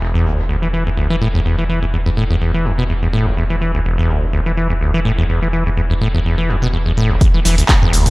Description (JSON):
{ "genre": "acid house", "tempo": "125 BPM", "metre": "4/4", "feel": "swing 54% on 16ths", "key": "unclear", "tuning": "A4 = 442 Hz", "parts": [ { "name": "acid bass, saw", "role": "riff", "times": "0.0-8.1 s", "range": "E1 to E3", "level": "-16 LUFS", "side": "equal", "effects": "tube saturation, sidechain pumping, analog delay" }, { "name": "saturated sub bass", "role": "bass", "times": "0.0-8.1 s", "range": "E1", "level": "-19 LUFS", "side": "equal", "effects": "sidechain pumping" }, { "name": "punchy analog drum machine", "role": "drums", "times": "0.0-8.1 s", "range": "cabasa, handclaps, hi-hat, snare drum, toms", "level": "-19 LUFS", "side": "right 1 dB", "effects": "low-pass filter on hats, low-pass filter on perc, low-pass filter on snare, low-pass filter on toms, low-pass filter on room, dub echo" }, { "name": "electronic kick drum", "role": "drums", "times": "7.2-7.8 s", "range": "none", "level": "-12 LUFS", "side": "equal", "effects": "none" } ], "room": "light reverb", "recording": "echo-heavy mix", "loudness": "-14 LUFS", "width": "side -22 dB against mid", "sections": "0.0-7.2 A section", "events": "none", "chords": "0.0 E5; 7.2 E7(no3)", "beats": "0.01 0.49 0.97 | 1.45 1.93 2.41 2.89 | 3.37 3.85 4.33 4.81 | 5.29 5.77 6.25 6.73 | 7.21 7.69" }